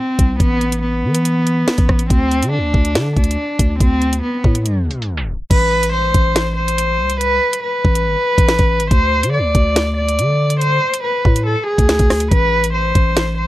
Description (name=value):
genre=hip hop, drill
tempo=141 BPM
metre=4/4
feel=half-time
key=A harmonic minor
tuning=A4 = 440 Hz
part: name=warm cello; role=melody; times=0.0-13.5 s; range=G#3 to D5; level=-17 LUFS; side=equal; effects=low-pass filter, tape echo
part: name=growling 808-style bass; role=bass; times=0.2-13.5 s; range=G#1 to E3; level=-19 LUFS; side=equal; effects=none
part: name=drill drum kit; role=drums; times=0.2-13.3 s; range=crash cymbal, hi-hat, kick drum, rim click, snare drum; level=-15 LUFS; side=equal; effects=none
room=light reverb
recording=tape stop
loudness=-13 LUFS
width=side -15 dB against mid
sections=0.0-5.5 A section; 5.5-13.5 B section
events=tape stop 4.7-5.5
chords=0.0 Asus2; 2.1 D5; 5.5 Amadd9; 8.9 D5; 12.3 Amadd9